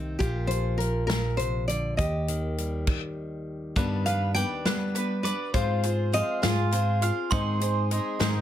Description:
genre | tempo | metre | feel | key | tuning
indie folk with a building arrangement | 67 BPM (dotted quarters) | 6/8 | straight | unclear | A4 = 440 Hz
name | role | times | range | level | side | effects
fingerpicked plugged-in steel-string acoustic guitar | accompaniment | 0.0-4.7 s | Eb2 to G4 | -34 LUFS | left 1 dB | none
fingered electric bass | bass | 0.0-8.4 s | Bb1 to G3 | -28 LUFS | equal | none
nylon-string guitar | melody | 0.2-7.1 s | G4 to G5 | -30 LUFS | left 1 dB | none
natural country drum kit | drums | 0.2-8.3 s | crash cymbal, hi-hat, kick drum, snare drum | -29 LUFS | equal | none
picked acoustic archtop guitar | accompaniment | 3.8-8.4 s | G2 to B4 | -31 LUFS | left 6 dB | none
bowl-back mandolin | arpeggios | 3.8-8.4 s | D4 to F5 | -33 LUFS | right 7 dB | none
glockenspiel with brass mallets | second line | 7.3-8.4 s | C6 | -32 LUFS | right 7 dB | none
room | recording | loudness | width
light reverb, small room ambience | none | -24 LUFS | side -11 dB against mid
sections
0.0-3.8 A section; 3.8-8.4 B section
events
stop 2.9-3.8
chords
0.2 Bb; 2.0 Eb; 3.8 G; 5.5 Fm/Ab; 7.3 Ab

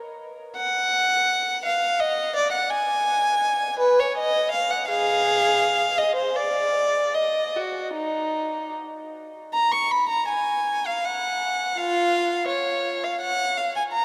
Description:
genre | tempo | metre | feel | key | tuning
classical, baroque-style suite movement for unaccompanied violin | 74-85 BPM | 3/4 | rubato | Eb minor | A4 = 440 Hz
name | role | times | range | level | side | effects
warm violin | solo | 0.6-14.0 s | Eb4 to C#6 | -23 LUFS | equal | none
room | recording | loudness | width
wet cathedral reverb, RT60 6.3 s | none | -23 LUFS | mono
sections
0.0-9.5 A section; 9.5-14.0 A section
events
none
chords
none

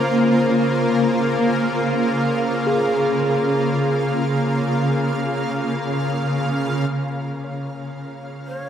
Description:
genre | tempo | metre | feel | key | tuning
ambient | 57 BPM | 4/4 | straight | unclear | A4 = 439 Hz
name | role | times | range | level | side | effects
shimmering ambient pad | sustained chords | 0.0-8.7 s | Db3 to C6 | -19 LUFS | equal | chorus, built-in reverb, shimmer reverb
tine electric piano | arpeggios | 0.0-8.7 s | Ab4 to Db5 | -26 LUFS | equal | medium stereo tremolo, shimmer reverb, tape echo
breathy mellow shakuhachi | melody | 8.5-8.7 s | Db5 | -30 LUFS | equal | none
room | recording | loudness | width
wet cathedral reverb, RT60 5.1 s | in a vast, echoing space | -18 LUFS | side -9 dB against mid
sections
0.0-6.9 A section; 6.9-8.7 B section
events
none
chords
0.0 Bbmadd9/Db; 6.9 Dbmaj9

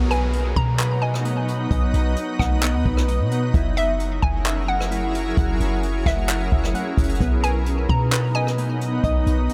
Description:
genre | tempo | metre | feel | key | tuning
hip hop, atmospheric cloud-rap | 131 BPM | 4/4 | half-time | B major | A4 = 440 Hz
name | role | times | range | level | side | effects
shimmering ambient pad | sustained chords | 0.0-9.5 s | F#3 to A#4 | -30 LUFS | equal | chorus, built-in reverb, sidechain pumping
glassy digital keys | arpeggios | 0.0-9.5 s | B3 to F#5 | -31 LUFS | equal | chorus, tape echo
clean 808-style bass | bass | 0.0-9.5 s | F#1 to B2 | -25 LUFS | equal | none
downlifter | sound effects | 0.0-3.5 s | none | -42 LUFS | equal | none
hollow square pluck | melody | 0.1-8.6 s | E5 to A#5 | -32 LUFS | equal | chorus, tape echo
jazz brush drum kit | drums | 0.1-9.5 s | handclaps, hi-hat, kick drum, rim click | -26 LUFS | equal | none
room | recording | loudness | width
light reverb, small room ambience | none | -21 LUFS | mono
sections
0.0-9.5 A section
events
none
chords
0.0 B; 3.5 F#7; 7.2 B

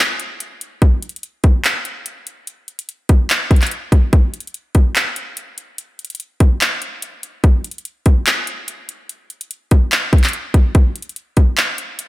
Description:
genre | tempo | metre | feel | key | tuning
hip hop | 145 BPM | 4/4 | half-time | none | none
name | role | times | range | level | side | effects
trap drum kit | drums | 0.2-12.1 s | handclaps, hi-hat, kick drum | -14 LUFS | equal | none
room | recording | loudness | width
little or no reverb | none | -14 LUFS | side -18 dB against mid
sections
0.0-12.1 A section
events
none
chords
none

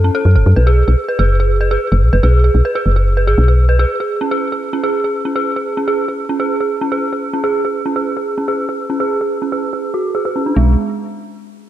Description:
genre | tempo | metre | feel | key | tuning
IDM | 144 BPM | 4/4 | straight | unclear | A4 = 440 Hz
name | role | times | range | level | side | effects
dark detuned synth bell | arpeggios | 0.0-10.8 s | G#3 to B4 | -17 LUFS | right 2 dB | chorus, vintage 12-bit sampler grit, low-pass filter, ping-pong delay
woody FM bass | bass | 0.0-3.9, 10.6-10.8 s | F#1 to F#2 | -11 LUFS | equal | none
room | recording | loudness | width
little or no reverb | none | -13 LUFS | side -12 dB against mid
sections
0.0-10.6 A section; 10.6-11.7 B section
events
filter sweep on synth bell 0.0-10.6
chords
0.0 F#m; 0.6 B5; 3.9 C#5; 10.6 G#m/B

